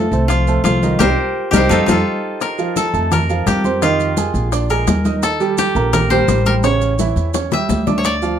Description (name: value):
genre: Afro-Cuban jazz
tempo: 170 BPM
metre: 4/4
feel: straight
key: unclear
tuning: A4 = 440 Hz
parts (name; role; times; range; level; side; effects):
- koto; melody; 0.0-8.4 s; Eb4 to E5; -19 LUFS; left 2 dB; none
- growling trombone; second line; 0.0-2.0 s; F3 to A3; -21 LUFS; left 4 dB; none
- warm baby grand piano; accompaniment; 0.0-8.4 s; C#3 to Eb6; -20 LUFS; right 6 dB; none
- upright bass; bass; 0.0-8.4 s; A1 to F2; -19 LUFS; equal; none
- bongos; percussion; 0.1-8.2 s; none; -24 LUFS; left 6 dB; none
- congas; percussion; 0.1-8.4 s; none; -22 LUFS; left 1 dB; none
- maracas; percussion; 0.1-8.4 s; none; -30 LUFS; right 10 dB; none
room: moderate club reverb, RT60 0.6 s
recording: none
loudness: -14 LUFS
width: side -9 dB against mid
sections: 0.0-2.4 A section; 2.4-8.4 B section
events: band accent 1.0-2.4; drum fill 7.3-8.0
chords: 0.0 F; 1.0 Cm7; 1.7 F7; 2.4 Bbsus2; 3.8 Fm7; 4.5 Bb7; 5.2 Eb6; 6.6 A7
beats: 0.30 0.65 | 1.00 1.35 1.71 2.06 | 2.41 2.76 3.12 3.47 | 3.82 4.17 4.52 4.88 | 5.23 5.58 5.93 6.28 | 6.63 6.99 7.34 7.69 | 8.04